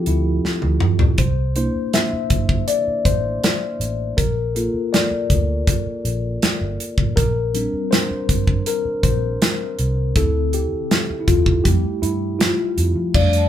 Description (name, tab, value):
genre	lush 1970s-style soul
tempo	80 BPM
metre	4/4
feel	straight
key	G dorian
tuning	A4 = 438 Hz
part	mellow tine electric piano	accompaniment	0.0-13.5 s	D3 to E5	-22 LUFS	left 3 dB	slow stereo tremolo
part	vintage muted fingered electric bass	bass	0.1-13.5 s	G1 to F3	-22 LUFS	equal	none
part	modern studio drum kit	drums	0.1-13.5 s	crash cymbal, hi-hat, kick drum, snare drum, toms	-19 LUFS	right 1 dB	none
part	vibraphone with medium hard mallets	texture	13.1-13.5 s	F5 to A5	-29 LUFS	right 8 dB	none
room	moderate studio reverb, RT60 0.5 s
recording	band playing live in one room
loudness	-17 LUFS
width	side -10 dB against mid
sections	0.0-13.1 A section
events	tine electric piano solo 0.0-13.1; drum fill 0.4-1.2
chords	0.0 Dm9; 1.2 C7; 4.2 Gm7/Bb (rootless); 7.2 Bb69; 10.2 Dsus2; 11.7 Fmaj7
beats	0.44 | 1.19 1.93 2.68 3.43 | 4.18 4.92 5.67 6.42 | 7.17 7.92 8.66 9.41 | 10.16 10.90 11.65 12.40 | 13.15